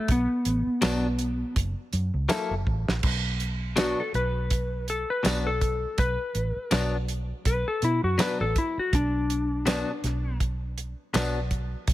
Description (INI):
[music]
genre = straight-eighth soul blues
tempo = 81 BPM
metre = 4/4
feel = swing 56% on 16ths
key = B minor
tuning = A4 = 438 Hz
[part]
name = clean lap steel guitar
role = melody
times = 0.0-10.4 s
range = B3 to B4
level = -28 LUFS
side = left 2 dB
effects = none
[part]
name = vintage muted fingered electric bass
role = bass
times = 0.1-11.9 s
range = F#1 to B2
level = -28 LUFS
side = right 1 dB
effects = none
[part]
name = damped 70s drum kit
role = drums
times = 0.1-11.9 s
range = crash cymbal, hi-hat, kick drum, snare drum, tambourine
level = -28 LUFS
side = right 1 dB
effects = none
[part]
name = direct-recorded clean electric guitar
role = stabs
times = 0.8-11.4 s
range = B2 to A4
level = -30 LUFS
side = left 3 dB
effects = vibrato effect
[sound]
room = light reverb, studio ambience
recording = none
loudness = -24 LUFS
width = side -15 dB against mid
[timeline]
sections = 0.0-3.0 A section; 3.0-11.9 B section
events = electric slide guitar solo 0.0-3.0; drum fill 2.7-3.0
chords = 0.0 Bm; 1.6 F#7#9; 3.0 Bm